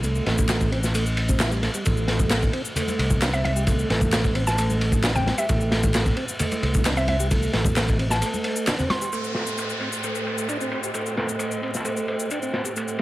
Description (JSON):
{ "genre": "breakbeat, breaks", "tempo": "132 BPM", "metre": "4/4", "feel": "straight", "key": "A minor", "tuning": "A4 = 442 Hz", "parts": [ { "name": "tonewheel organ", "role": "riff", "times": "0.0-13.0 s", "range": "G3 to G4", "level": "-28 LUFS", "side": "right 2 dB", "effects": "overdrive, slow rotary speaker, vintage 12-bit sampler grit, low-pass filter, tape echo" }, { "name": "modern bright picked electric bass", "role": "bass", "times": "0.0-8.2 s", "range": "A1 to C2", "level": "-24 LUFS", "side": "equal", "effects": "none" }, { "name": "crunchy breakbeat drum kit", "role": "drums", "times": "0.0-13.0 s", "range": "kick drum, ride cymbal, snare drum", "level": "-25 LUFS", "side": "equal", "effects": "low-pass filter on kick, low-pass filter on cymbals, low-pass filter on snare, low-pass filter on room" }, { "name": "electronic shaker and handclaps", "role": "drums", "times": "0.0-13.0 s", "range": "none", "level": "-31 LUFS", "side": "left 2 dB", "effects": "none" }, { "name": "congas", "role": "percussion", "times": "2.2-9.0 s", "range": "none", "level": "-31 LUFS", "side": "left 1 dB", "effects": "none" }, { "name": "mallet-like synth pluck", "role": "melody", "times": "3.3-9.1 s", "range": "E5 to C6", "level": "-30 LUFS", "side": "equal", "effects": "chorus, small speaker sound, tape echo" }, { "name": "dark studio string section", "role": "sustained chords", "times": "9.1-13.0 s", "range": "A2 to C5", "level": "-33 LUFS", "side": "right 1 dB", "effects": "vintage 12-bit sampler grit, sidechain pumping" }, { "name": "downlifter", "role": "sound effects", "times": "9.1-12.8 s", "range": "none", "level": "-33 LUFS", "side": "equal", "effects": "none" } ], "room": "small room ambience", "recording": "vinyl crackle", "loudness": "-21 LUFS", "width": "side -16 dB against mid", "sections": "0.0-9.1 A section; 9.1-13.0 B section", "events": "break 8.2-9.1", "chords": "0.0 Am; 9.1 Am7" }